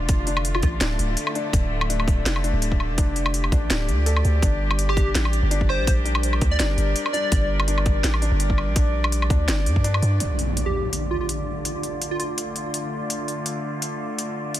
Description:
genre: half-time drum and bass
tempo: 166 BPM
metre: 4/4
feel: swing 55% on 16ths, half-time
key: D minor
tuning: A4 = 441 Hz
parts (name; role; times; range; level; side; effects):
- warm chamber cello section; sustained chords; 0.0-14.6 s; D3 to D5; -29 LUFS; equal; vintage 12-bit sampler grit, sidechain pumping, low-pass filter
- felt-muted upright piano; arpeggios; 0.0-10.2 s; D4 to A4; -31 LUFS; left 6 dB; vintage 12-bit sampler grit, digital delay
- long sustained 808-style bass; bass; 0.0-10.2 s; D1 to G2; -22 LUFS; equal; none
- drum and bass drum kit; drums; 0.1-14.6 s; hi-hat, snare drum, woodblock; -27 LUFS; left 1 dB; small room ambience
- electronic kick drum; drums; 0.1-9.8 s; none; -21 LUFS; equal; small room ambience
- plucky unison lead; melody; 0.6-0.7, 4.9-7.5, 10.7-12.3 s; F4 to D5; -31 LUFS; right 1 dB; dub echo
- impact; sound effects; 10.2-11.7 s; none; -28 LUFS; equal; none
room: digital ambience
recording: dense, heavily limited modern master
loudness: -20 LUFS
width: side -13 dB against mid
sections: 0.0-10.2 A section; 10.2-14.6 B section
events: impact 10.2-11.7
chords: 0.0 Dm; 4.4 Gm; 10.2 Dm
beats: | 0.09 0.45 0.81 1.17 | 1.53 1.90 2.26 2.62 | 2.98 3.34 3.70 4.06 | 4.42 4.79 5.15 5.51 | 5.87 6.23 6.59 6.96 | 7.32 7.68 8.04 8.40 | 8.76 9.12 9.48 9.85 | 10.21 10.57 10.93 11.29 | 11.65 12.02 12.38 12.74 | 13.10 13.46 13.82 14.18 | 14.55

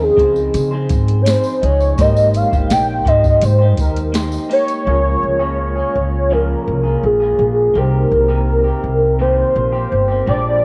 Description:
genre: indie pop, bedroom pop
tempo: 83 BPM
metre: 4/4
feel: straight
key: unclear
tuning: A4 = 439 Hz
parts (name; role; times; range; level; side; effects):
- warm velvety synth lead; melody; 0.0-10.6 s; Ab4 to G5; -18 LUFS; equal; ensemble chorus, cassette tape, tape echo
- electric guitar through a small old amp; accompaniment; 0.0-10.6 s; Bb2 to C5; -27 LUFS; equal; lush chorus, warbly pitch drift, cassette tape
- mellow reed electric piano; accompaniment; 0.0-10.6 s; F3 to G5; -30 LUFS; equal; fast tremolo, cassette tape
- upright bass; bass; 0.0-10.6 s; G1 to Db3; -20 LUFS; equal; none
- soft vintage rhythm box; drums; 0.2-4.9 s; hi-hat, kick drum, snare drum; -21 LUFS; equal; cassette tape
- tambourine; percussion; 0.4-4.9 s; none; -40 LUFS; equal; none
room: light reverb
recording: home recording on cassette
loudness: -15 LUFS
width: mono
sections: 0.0-4.9 A section; 4.9-10.6 B section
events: soft synth lead solo 0.0-4.9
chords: 0.0 Dbmaj9; 2.0 Abmaj9; 4.9 Db6; 7.8 Cm7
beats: 0.54 1.26 | 1.99 2.71 3.43 4.15 | 4.87 5.59 6.31 7.03 | 7.75 8.48 9.20 9.92 | 10.64

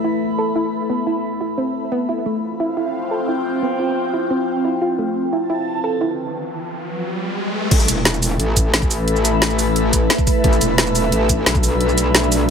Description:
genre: dark technical drum and bass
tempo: 176 BPM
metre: 4/4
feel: straight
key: A minor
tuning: A4 = 442 Hz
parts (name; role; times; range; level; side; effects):
- deep dark ambient pad; sustained chords; 0.0-12.5 s; A3 to G5; -23 LUFS; left 2 dB; chorus, built-in reverb, sidechain pumping
- soft round pluck; arpeggios; 0.0-6.1 s; A3 to A4; -22 LUFS; right 2 dB; analog chorus, cassette tape, sidechain pumping, tape echo
- airy breathy pad; texture; 0.0-12.5 s; C4 to B5; -24 LUFS; equal; chorus, phaser, sidechain pumping
- riser; sound effects; 6.2-7.7 s; none; -26 LUFS; equal; none
- metallic wobble bass; bass; 7.7-12.5 s; E1 to B1; -19 LUFS; equal; distortion, chorus
- drum and bass drum kit; drums; 7.7-12.4 s; crash cymbal, hi-hat, shaker, snare drum; -18 LUFS; equal; overdrive
- electronic kick drum; drums; 7.7-11.6 s; none; -18 LUFS; equal; overdrive
room: light reverb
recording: none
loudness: -16 LUFS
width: side -7 dB against mid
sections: 0.0-7.7 A section; 7.7-12.5 B section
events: filter sweep on synth pluck 0.0-7.7; riser 6.2-7.7; break 6.3-7.7; drop 7.7-12.5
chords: 0.0 A5; 2.3 F; 7.7 A5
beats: 0.21 0.55 | 0.90 1.24 1.58 1.92 | 2.26 2.60 2.94 3.28 | 3.62 3.96 4.30 4.64 | 4.99 5.33 5.67 6.01 | 6.35 6.69 7.03 7.37 | 7.71 8.05 8.39 8.74 | 9.08 9.42 9.76 10.10 | 10.44 10.78 11.12 11.46 | 11.80 12.14 12.49

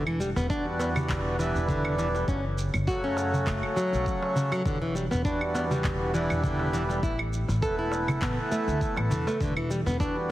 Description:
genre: organic downtempo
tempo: 101 BPM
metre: 4/4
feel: swing 55% on 16ths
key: E dorian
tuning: A4 = 439 Hz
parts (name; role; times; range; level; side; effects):
- hand-pumped harmonium; accompaniment; 0.0-10.3 s; C#3 to A4; -30 LUFS; right 1 dB; sidechain pumping, digital delay
- nylon-string guitar; arpeggios; 0.0-10.2 s; C#3 to A4; -30 LUFS; equal; digital delay
- upright bass; bass; 0.0-10.3 s; E1 to F#2; -30 LUFS; equal; sidechain pumping
- electronic claves, shaker and handclaps; drums; 0.1-10.1 s; none; -37 LUFS; right 1 dB; none
- darbuka; percussion; 0.4-10.0 s; none; -34 LUFS; right 1 dB; none
- electronic kick drum; drums; 0.5-10.1 s; none; -32 LUFS; equal; none
room: moderate scoring stage reverb, RT60 1.7 s, small room ambience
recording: heavily compressed radio sound, multiband compression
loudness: -25 LUFS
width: side -15 dB against mid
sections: 0.0-10.3 A section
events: none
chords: 0.0 Em7; 2.3 F#m; 4.7 Em7; 7.0 Asus2; 9.4 Em7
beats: 0.50 1.09 1.69 | 2.28 2.87 3.47 4.06 | 4.66 5.25 5.84 6.44 | 7.03 7.62 8.22 8.81 | 9.41 10.00

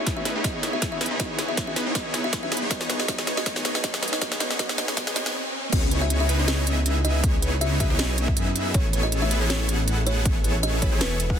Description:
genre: future bass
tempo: 159 BPM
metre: 4/4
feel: swing 54% on 16ths, half-time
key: C# minor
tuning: A4 = 440 Hz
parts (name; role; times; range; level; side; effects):
- kalimba; melody; 0.0-11.4 s; B4 to E5; -32 LUFS; equal; sidechain pumping, ping-pong delay
- shimmering ambient pad; sustained chords; 0.0-5.3 s; C#3 to D#5; -39 LUFS; equal; none
- thumb-piano-like synth pluck; arpeggios; 0.0-11.4 s; B3 to B4; -38 LUFS; right 1 dB; none
- supersaw chords; riff; 0.0-11.4 s; B3 to F#5; -28 LUFS; equal; sidechain pumping, low-pass filter
- wide detuned saw bass; bass; 0.0-11.4 s; E1 to F#2; -27 LUFS; equal; chorus, sidechain pumping, high-pass filter
- riser; sound effects; 1.5-5.7 s; none; -38 LUFS; left 1 dB; none
- electronic kick drum; drums; 0.1-11.4 s; none; -26 LUFS; equal; overdrive
- trap drum kit; drums; 0.1-11.3 s; crash cymbal, hi-hat, snare drum; -28 LUFS; equal; high-pass filter on hats, high-pass filter on snare, high-pass filter on cymbals
- airy dreamy lead; arpeggios; 5.7-11.4 s; B4 to F#5; -39 LUFS; right 1 dB; none
room: light reverb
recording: dense, heavily limited modern master, high-pass filter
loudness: -21 LUFS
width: side -8 dB against mid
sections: 0.0-5.7 A section; 5.7-11.4 B section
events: build-up 0.0-5.7; drum fill 0.0-5.3; riser 1.5-5.7; stop 5.3-5.7; drop 5.7-11.4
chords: 0.0 C#m9; 2.5 G#7sus4; 5.7 C#m9; 8.7 Amaj9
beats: 0.07 0.44 0.82 | 1.20 1.57 1.95 2.33 | 2.71 3.08 3.46 3.84 | 4.22 4.59 4.97 5.35 | 5.73 6.10 6.48 6.86 | 7.24 7.61 7.99 8.37 | 8.74 9.12 9.50 9.88 | 10.25 10.63 11.01 11.39

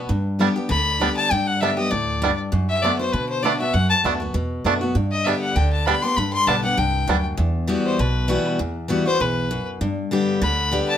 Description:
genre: bluegrass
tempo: 198 BPM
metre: 4/4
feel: swing 54% on 8ths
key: G major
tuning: A4 = 440 Hz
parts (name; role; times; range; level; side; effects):
- picked steel-string acoustic guitar; accompaniment; 0.0-11.0 s; E2 to G4; -23 LUFS; left 2 dB; none
- upright bass; bass; 0.1-10.8 s; B1 to D3; -24 LUFS; right 1 dB; none
- bluegrass banjo; melody; 0.4-7.2 s; G3 to D4; -22 LUFS; right 5 dB; none
- rich fiddle; melody; 0.7-11.0 s; B4 to C6; -22 LUFS; left 3 dB; none
room: light reverb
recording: minimal, uncompressed stereo recording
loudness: -19 LUFS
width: side -10 dB against mid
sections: 0.0-7.4 A section; 7.4-11.0 A section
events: none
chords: 0.1 G; 2.5 D6/F#; 5.0 G; 7.4 Emadd9; 9.8 G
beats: | 0.10 0.40 0.70 1.01 | 1.31 1.62 1.92 2.22 | 2.53 2.83 3.13 3.44 | 3.74 4.05 4.35 4.65 | 4.96 5.26 5.56 5.87 | 6.17 6.47 6.78 7.08 | 7.38 7.69 7.99 8.29 | 8.60 8.90 9.21 9.51 | 9.81 10.12 10.42 10.72

